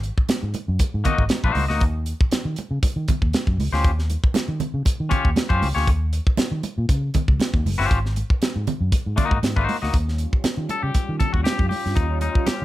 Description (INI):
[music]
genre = funk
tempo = 118 BPM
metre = 4/4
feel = straight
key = Eb mixolydian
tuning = A4 = 441 Hz
[part]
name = vintage muted fingered electric bass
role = bass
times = 0.0-12.6 s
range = Gb1 to Eb3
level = -24 LUFS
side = equal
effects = none
[part]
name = tight funk drum kit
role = drums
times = 0.0-12.6 s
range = hi-hat, kick drum, snare drum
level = -21 LUFS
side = equal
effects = none
[part]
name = congas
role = percussion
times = 0.3-12.6 s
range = none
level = -29 LUFS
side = right 4 dB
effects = none
[part]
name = twangy electric guitar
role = accompaniment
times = 1.0-12.6 s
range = Bb3 to Eb5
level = -24 LUFS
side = left 4 dB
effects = none
[part]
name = soft string machine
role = sustained chords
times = 9.9-12.6 s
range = G3 to F4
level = -32 LUFS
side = right 1 dB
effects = phaser, ensemble chorus
[sound]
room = light reverb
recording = none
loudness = -19 LUFS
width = side -15 dB against mid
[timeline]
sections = 0.0-9.9 A section; 9.9-12.6 B section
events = clean electric guitar solo 9.9-12.6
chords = 0.0 Ab7sus2; 1.8 Eb9; 7.9 Ab7sus2; 9.9 Eb9